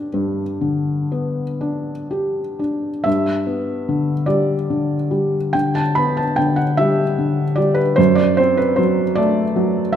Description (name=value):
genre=classical, romantic nocturne for solo piano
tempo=39-54 BPM (dotted quarters)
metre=12/8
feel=rubato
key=G major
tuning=A4 = 440 Hz
part: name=felt-muted upright piano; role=solo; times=0.0-10.0 s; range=F#2 to B5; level=-16 LUFS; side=equal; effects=none
room=wet recital hall reverb, RT60 1.4 s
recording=none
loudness=-16 LUFS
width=side -9 dB against mid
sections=0.0-3.1 A section; 3.1-10.0 A section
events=none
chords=0.0 G; 8.0 D7/F#